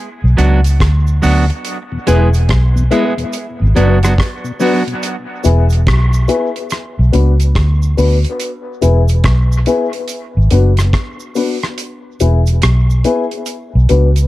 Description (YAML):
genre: dub reggae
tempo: 71 BPM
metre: 4/4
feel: swing 64% on 16ths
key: B dorian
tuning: A4 = 440 Hz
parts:
  - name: vintage muted fingered electric bass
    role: bass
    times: 0.2-14.3 s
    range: E1 to D2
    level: -10 LUFS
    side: equal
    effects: none
  - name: clean electric guitar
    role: accompaniment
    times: 0.4-4.8 s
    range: F#3 to G#4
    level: -18 LUFS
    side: right 3 dB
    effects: dub echo
  - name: damped 70s drum kit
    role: drums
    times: 0.4-14.3 s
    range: hi-hat, kick drum, rim click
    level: -19 LUFS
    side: equal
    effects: none
  - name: cabasa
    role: percussion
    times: 0.4-14.3 s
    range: none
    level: -32 LUFS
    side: right 9 dB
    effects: none
  - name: mellow tonewheel organ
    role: accompaniment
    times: 1.9-4.9 s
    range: E2 to E4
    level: -23 LUFS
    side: left 2 dB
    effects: slow rotary speaker, dub echo
  - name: dark upright piano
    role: stabs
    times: 2.1-14.1 s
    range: B3 to B4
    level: -18 LUFS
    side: left 4 dB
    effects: dub echo
room: light reverb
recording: dark, warm production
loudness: -11 LUFS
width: side -16 dB against mid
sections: 0.0-14.3 A section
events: break 0.0-1.6; kick muted 11.8-14.3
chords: 0.0 Bm; 1.6 E; 3.3 Bm; 5.0 E; 6.7 Bm; 8.4 E; 10.1 Bm; 11.8 E; 13.5 Bm